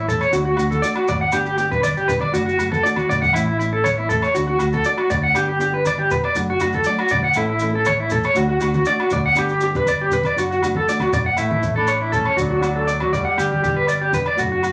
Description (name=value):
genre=highlife guitar band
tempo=120 BPM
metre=4/4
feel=straight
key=unclear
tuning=A4 = 440 Hz
part: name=electric guitar through a small old amp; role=arpeggios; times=0.0-14.7 s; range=E4 to F#5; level=-21 LUFS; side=equal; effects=tremolo
part: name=fingered electric bass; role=bass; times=0.0-14.7 s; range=F#1 to D2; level=-28 LUFS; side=equal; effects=none
part: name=nylon-string guitar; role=accompaniment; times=0.1-14.7 s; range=E3 to A4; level=-30 LUFS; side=equal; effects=none
part: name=congas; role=percussion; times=0.1-14.5 s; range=none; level=-30 LUFS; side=equal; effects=none
part: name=maracas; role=percussion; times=0.1-14.7 s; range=none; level=-39 LUFS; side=equal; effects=none
part: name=agogo bells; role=percussion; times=0.2-14.7 s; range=none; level=-36 LUFS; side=equal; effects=none
part: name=mellow baroque flute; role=melody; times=11.4-14.1 s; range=D5 to B5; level=-30 LUFS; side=equal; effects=none
part: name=clear trumpet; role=second line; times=11.4-14.1 s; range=F#3 to D4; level=-32 LUFS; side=equal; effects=none
room=wet studio ambience, RT60 0.5 s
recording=vinyl crackle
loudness=-19 LUFS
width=mono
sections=0.0-11.4 A section; 11.4-14.7 B section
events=drum fill 3.0-3.3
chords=0.3 D; 1.3 G; 2.3 D/F#; 3.3 A; 4.3 D; 5.4 G; 6.4 D/F#; 7.4 A; 8.4 D; 9.4 G; 10.4 D/F#; 11.4 A; 12.4 D; 13.4 G